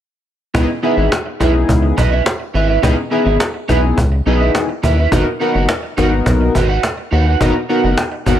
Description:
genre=early-eighties boogie funk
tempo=105 BPM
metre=4/4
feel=straight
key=C# dorian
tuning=A4 = 439 Hz
part: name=chorused polysynth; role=accompaniment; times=0.5-8.4 s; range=B3 to A#4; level=-18 LUFS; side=left 3 dB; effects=none
part: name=electric guitar at the edge of break-up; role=riff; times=0.5-8.4 s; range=C#4 to F#5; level=-20 LUFS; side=right 5 dB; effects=analog chorus
part: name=rubbery square bass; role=bass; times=0.5-8.4 s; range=F#1 to D#2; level=-15 LUFS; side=equal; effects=none
part: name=cajon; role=drums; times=0.5-8.4 s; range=none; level=-20 LUFS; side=equal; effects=none
room=little or no reverb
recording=none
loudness=-13 LUFS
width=side -10 dB against mid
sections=0.5-8.4 A section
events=none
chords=0.5 C#m9; 5.1 G#m7

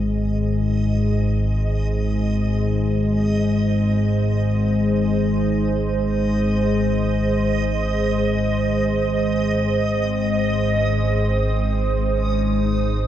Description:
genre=dark ambient drone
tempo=free time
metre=none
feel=none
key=Ab major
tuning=A4 = 440 Hz
part: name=dark analog pad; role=sustained chords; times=0.0-13.1 s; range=Ab3 to C5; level=-24 LUFS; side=right 2 dB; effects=chorus
part: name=analog drone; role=drone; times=0.0-13.1 s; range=Ab1 to Ab2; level=-20 LUFS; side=left 1 dB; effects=chorus
part: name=backwards swelling texture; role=texture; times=0.0-13.1 s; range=Eb5 to Eb6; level=-28 LUFS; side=right 1 dB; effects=built-in reverb
part: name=dark horsehead fiddle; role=melody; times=9.7-13.1 s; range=C4 to Eb4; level=-37 LUFS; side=equal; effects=diffuse ambient delay
room=wet cathedral reverb, RT60 6.2 s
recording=dark, warm production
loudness=-18 LUFS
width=side -11 dB against mid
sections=0.0-9.7 A section; 9.7-13.1 B section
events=fade-in on analog synth pad 0.0-9.7; fade-in on synth texture 0.0-9.7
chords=0.0 Ab

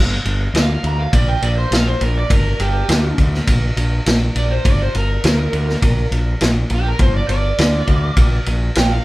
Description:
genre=blues rock power trio and southern rock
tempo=102 BPM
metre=4/4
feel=straight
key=G minor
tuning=A4 = 441 Hz
part: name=growling picked electric bass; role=bass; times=0.0-9.0 s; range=G1 to D2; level=-18 LUFS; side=equal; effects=overdrive
part: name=vintage drum kit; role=drums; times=0.3-8.9 s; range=kick drum, ride cymbal, snare drum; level=-17 LUFS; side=equal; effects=none
part: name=overdriven slide guitar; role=melody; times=0.6-9.0 s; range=G4 to Bb5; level=-23 LUFS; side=right 2 dB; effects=none
room=light reverb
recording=band playing live in one room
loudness=-14 LUFS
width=side -18 dB against mid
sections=0.0-9.0 A section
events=electric slide guitar solo 0.0-9.0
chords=0.0 Gm

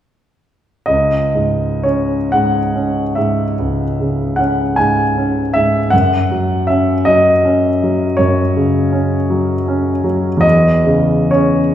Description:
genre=classical, romantic nocturne for solo piano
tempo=39-56 BPM (dotted quarters)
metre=12/8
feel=rubato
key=C# minor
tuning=A4 = 441 Hz
part: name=warm grand piano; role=solo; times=0.9-11.7 s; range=C#2 to G#5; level=-12 LUFS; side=equal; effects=none
room=wet recital hall reverb, RT60 1.6 s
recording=recorded in a church or concert hall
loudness=-12 LUFS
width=side -10 dB against mid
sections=0.9-11.7 A section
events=none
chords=0.9 C#m; 5.9 F#5; 10.4 C#m/E

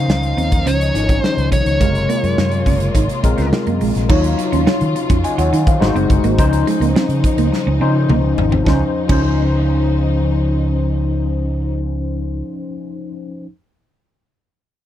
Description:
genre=polished 1980s jazz-funk pop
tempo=105 BPM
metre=4/4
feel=straight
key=Db major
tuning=A4 = 440 Hz
part: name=nasal lead guitar with a parked wah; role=melody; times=0.0-3.5 s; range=Db5 to F5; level=-21 LUFS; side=equal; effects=overdrive
part: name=overdriven tine electric piano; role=accompaniment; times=0.0-13.5 s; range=C3 to Ab5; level=-20 LUFS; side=left 4 dB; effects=ensemble chorus
part: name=rich studio string section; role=sustained chords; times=0.0-11.7 s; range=C3 to Gb4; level=-29 LUFS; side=left 1 dB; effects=none
part: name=fingered electric bass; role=bass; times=0.0-12.4 s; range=Gb1 to Eb3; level=-18 LUFS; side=equal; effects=none
part: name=modern studio drum kit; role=drums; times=0.1-9.3 s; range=crash cymbal, hi-hat, kick drum, snare drum, toms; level=-18 LUFS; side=equal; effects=none
part: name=clean electric guitar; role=riff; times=0.4-9.2 s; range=Ab3 to F4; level=-22 LUFS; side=right 10 dB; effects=wide subtle chorus
room=little or no reverb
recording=none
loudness=-14 LUFS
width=side -11 dB against mid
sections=0.0-4.1 A section; 4.1-8.7 B section; 8.7-10.9 C section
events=drum fill 7.5-8.7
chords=0.0 Dbmaj9; 1.8 Gbmaj9#11; 4.1 Ebm9; 5.8 Ab7; 6.4 Dbmaj9

